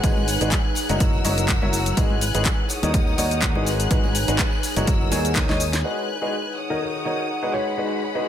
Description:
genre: piano house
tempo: 124 BPM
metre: 4/4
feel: swing 55% on 16ths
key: G# minor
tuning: A4 = 440 Hz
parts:
  - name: warm symphonic violin section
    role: sustained chords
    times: 0.0-8.3 s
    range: G#4 to F#6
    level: -28 LUFS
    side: left 2 dB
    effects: sidechain pumping
  - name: clear upright piano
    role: riff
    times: 0.0-8.3 s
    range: D#3 to G#5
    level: -26 LUFS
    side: left 1 dB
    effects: sidechain pumping, low-pass filter, ping-pong delay
  - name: fingered electric bass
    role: bass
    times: 0.0-5.8 s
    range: F#1 to D#2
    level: -25 LUFS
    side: equal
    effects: tube saturation, sidechain pumping
  - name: electronic kick drum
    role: drums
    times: 0.0-5.5 s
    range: none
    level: -22 LUFS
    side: equal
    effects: none
  - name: house drum kit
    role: drums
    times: 0.0-5.8 s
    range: cabasa, handclaps, hi-hat, snare drum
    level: -26 LUFS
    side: left 1 dB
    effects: overdrive, low-pass filter on hats, low-pass filter on perc, low-pass filter on snare
  - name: tambourine and congas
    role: percussion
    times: 0.0-5.8 s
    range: none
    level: -33 LUFS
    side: left 1 dB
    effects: none
  - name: warbly tape-like pad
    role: texture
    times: 0.0-8.3 s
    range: D#4 to F#5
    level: -32 LUFS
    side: right 2 dB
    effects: chorus, built-in reverb, sidechain pumping
  - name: dark grand piano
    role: melody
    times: 6.7-7.7 s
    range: A#4 to C#5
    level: -31 LUFS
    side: equal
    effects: ping-pong delay
room: moderate plate reverb, RT60 1.7 s, small room ambience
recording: dreamy mix soaked in reverb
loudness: -19 LUFS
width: side -10 dB against mid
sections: 0.0-5.8 A section; 5.8-8.3 B section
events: drum fill 5.4-5.8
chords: 0.0 G#m7; 1.0 F#7; 2.0 G#m7; 2.7 D#m7; 3.7 G#m7; 4.9 F#7; 5.4 D#7sus4; 5.8 G#m7; 6.6 D#m7; 7.5 G#m7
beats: | 0.04 0.52 1.00 1.49 | 1.97 2.46 2.94 3.42 | 3.91 4.39 4.88 5.36 | 5.84 6.33 6.81 7.29 | 7.78 8.26

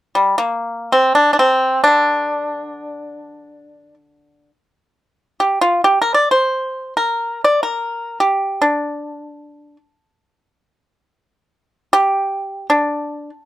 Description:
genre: chinese traditional, Chinese solo plucked strings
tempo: free time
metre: none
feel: none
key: unclear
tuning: A4 = 441 Hz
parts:
  - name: pipa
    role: solo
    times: 0.2-13.3 s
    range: D3 to D5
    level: -15 LUFS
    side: equal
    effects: none
room: light reverb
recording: none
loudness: -14 LUFS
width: side -15 dB against mid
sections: 0.0-13.5 A section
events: none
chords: none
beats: free time

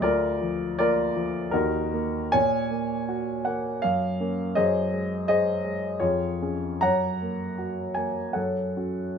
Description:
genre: classical, romantic character piece for solo piano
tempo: 80 BPM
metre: 3/4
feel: uneven beats, rubato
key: unclear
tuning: A4 = 440 Hz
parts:
  - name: warm grand piano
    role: solo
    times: 0.0-9.2 s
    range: D2 to Bb5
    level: -24 LUFS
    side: equal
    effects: none
room: light reverb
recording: minimal, uncompressed stereo recording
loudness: -24 LUFS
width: side -6 dB against mid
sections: 0.0-9.2 A section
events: none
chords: 0.0 A#/D; 1.5 D#m; 2.3 Gb/Bb; 3.8 Gb; 4.6 Ab7/Gb; 6.0 Db/F; 6.8 Gb; 8.4 Gbm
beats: | 0.04 0.80 1.53 | 2.34 3.09 3.83 | 4.55 5.28 6.01 | 6.83 7.58 8.36

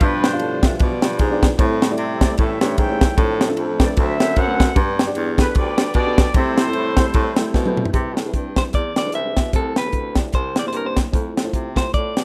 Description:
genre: uptempo gospel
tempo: 151 BPM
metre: 4/4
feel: swing 58% on 8ths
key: C major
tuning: A4 = 440 Hz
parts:
  - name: mellow horn section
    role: melody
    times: 0.0-7.7 s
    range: D4 to G5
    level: -28 LUFS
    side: equal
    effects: none
  - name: dark baby grand piano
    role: accompaniment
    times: 0.0-12.1 s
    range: G2 to F5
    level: -28 LUFS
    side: equal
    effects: none
  - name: percussive tonewheel organ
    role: sustained chords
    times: 0.0-7.9 s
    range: B2 to C5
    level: -32 LUFS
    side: equal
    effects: none
  - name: warm baritone saxophone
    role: bass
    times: 0.0-12.2 s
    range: C2 to C3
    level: -26 LUFS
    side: equal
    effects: none
  - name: tight funk drum kit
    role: drums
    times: 0.0-12.2 s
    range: hi-hat, kick drum, ride cymbal, snare drum, toms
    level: -20 LUFS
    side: equal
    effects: none
  - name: clean electric guitar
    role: melody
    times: 8.6-12.2 s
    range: A4 to E5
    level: -27 LUFS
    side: equal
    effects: none
room: studio reverb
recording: rough home demo mix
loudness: -19 LUFS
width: mono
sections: 0.0-7.9 A section; 7.9-12.2 B section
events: drum fill 7.5-7.9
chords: 0.0 G7; 1.6 Am7; 2.4 A7; 3.2 Dm7/A; 4.0 D7; 4.8 G; 6.3 C6; 7.9 Cmaj7; 8.7 E7; 9.5 Am7/C; 10.3 C7; 11.1 Fmaj7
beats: | 0.01 0.40 0.80 1.20 | 1.59 1.99 2.38 2.78 | 3.17 3.57 3.97 4.36 | 4.76 5.16 5.55 5.95 | 6.35 6.74 7.14 7.54 | 7.94 8.34 8.73 9.13 | 9.53 9.93 10.33 10.73 | 11.13 11.54 11.94

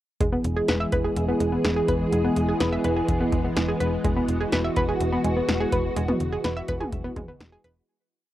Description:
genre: synth-pop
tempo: 125 BPM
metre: 4/4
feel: straight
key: unclear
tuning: A4 = 442 Hz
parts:
  - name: soft string machine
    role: sustained chords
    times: 0.2-7.8 s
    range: E3 to G#4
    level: -26 LUFS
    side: equal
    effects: ensemble chorus, cassette tape, plate reverb
  - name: analog pluck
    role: arpeggios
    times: 0.2-7.7 s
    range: G#3 to E5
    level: -28 LUFS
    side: right 1 dB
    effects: chorus, cassette tape, analog delay
  - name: slap-like FM bass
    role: bass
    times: 0.2-7.8 s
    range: E1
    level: -28 LUFS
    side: equal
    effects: none
  - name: electro analog drum machine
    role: drums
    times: 0.2-7.8 s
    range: hi-hat, kick drum, snare drum, toms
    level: -28 LUFS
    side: equal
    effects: cassette tape
room: moderate booth ambience, RT60 0.2 s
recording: home recording on cassette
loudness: -22 LUFS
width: side -14 dB against mid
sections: 0.2-7.9 bridge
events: fade-out 6.0-7.9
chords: 0.2 E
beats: | 0.20 0.69 1.17 1.65 | 2.12 2.60 3.08 3.56 | 4.04 4.53 5.00 5.49 | 5.96 6.45 6.92 7.41

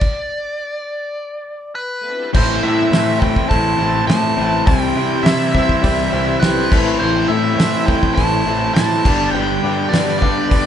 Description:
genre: classic rock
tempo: 103 BPM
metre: 4/4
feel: straight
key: A minor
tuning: A4 = 440 Hz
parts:
  - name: nasal lead guitar with a parked wah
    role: melody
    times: 0.0-10.7 s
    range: B4 to A5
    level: -21 LUFS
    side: equal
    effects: overdrive
  - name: damped 70s drum kit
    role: drums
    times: 0.0-10.7 s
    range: crash cymbal, hi-hat, kick drum, snare drum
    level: -18 LUFS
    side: equal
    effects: none
  - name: bright tonewheel organ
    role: sustained chords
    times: 2.0-10.7 s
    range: G3 to D5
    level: -31 LUFS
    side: equal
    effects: none
  - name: bright grand piano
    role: accompaniment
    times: 2.3-10.7 s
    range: D4 to G5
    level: -28 LUFS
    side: left 5 dB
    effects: none
  - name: biting overdriven guitar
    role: riff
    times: 2.3-10.7 s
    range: G2 to C4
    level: -23 LUFS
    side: equal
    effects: phaser
  - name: cranked stack guitar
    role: riff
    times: 2.3-10.7 s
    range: G2 to E4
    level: -22 LUFS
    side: left 8 dB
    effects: overdrive, spring reverb
  - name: cranked stack guitar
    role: riff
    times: 2.3-10.7 s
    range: G2 to G4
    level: -22 LUFS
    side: right 6 dB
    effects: overdrive
  - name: growling picked electric bass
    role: bass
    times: 2.3-10.7 s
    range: G1 to C3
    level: -23 LUFS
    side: equal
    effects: overdrive
room: moderate large studio reverb, RT60 0.9 s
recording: band playing live in one room, nothing above 11.0 kHz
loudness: -14 LUFS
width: side -9 dB against mid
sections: 0.0-2.3 A section; 2.3-10.7 B section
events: stop 0.0-2.3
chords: 0.0 G; 2.3 Am; 4.7 C; 6.7 Am; 9.1 G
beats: | 0.02 0.60 1.18 1.77 | 2.35 2.93 3.51 4.09 | 4.68 5.26 5.84 6.43 | 7.01 7.59 8.18 8.76 | 9.35 9.93 10.51

